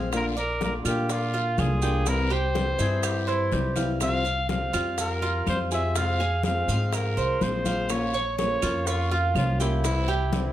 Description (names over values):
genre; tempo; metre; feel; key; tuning
latin, Cuban son and guajira; 123 BPM; 4/4; straight; unclear; A4 = 440 Hz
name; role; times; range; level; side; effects
fingerpicked old ladder-braced acoustic guitar; accompaniment; 0.0-10.5 s; C3 to F4; -31 LUFS; left 3 dB; none
Cuban tres; arpeggios; 0.0-10.5 s; E4 to F5; -30 LUFS; right 4 dB; none
upright bass; bass; 0.0-10.5 s; Bb1 to Bb2; -28 LUFS; equal; none
bongos; percussion; 0.1-10.5 s; none; -37 LUFS; left 8 dB; none
claves; percussion; 0.1-10.3 s; none; -39 LUFS; right 10 dB; none
congas; percussion; 0.1-10.5 s; none; -34 LUFS; left 2 dB; none
guiro; percussion; 0.1-10.5 s; none; -41 LUFS; left 7 dB; none
maracas; percussion; 0.1-10.5 s; none; -39 LUFS; right 10 dB; none
warm trumpet; melody; 0.2-10.5 s; E4 to F5; -29 LUFS; equal; none
warm oboe; second line; 2.8-3.9 s; E4 to Ab4; -34 LUFS; right 1 dB; none
room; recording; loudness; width
light reverb; none; -23 LUFS; side -12 dB against mid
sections
0.0-10.5 A section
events
none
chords
0.1 Bb; 2.1 C; 4.0 Csus4; 6.0 Fm; 7.9 Bbm; 9.8 C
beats
| 0.12 0.61 1.09 1.58 | 2.07 2.55 3.04 3.52 | 4.01 4.50 4.98 5.47 | 5.96 6.44 6.93 7.41 | 7.90 8.39 8.87 9.36 | 9.84 10.33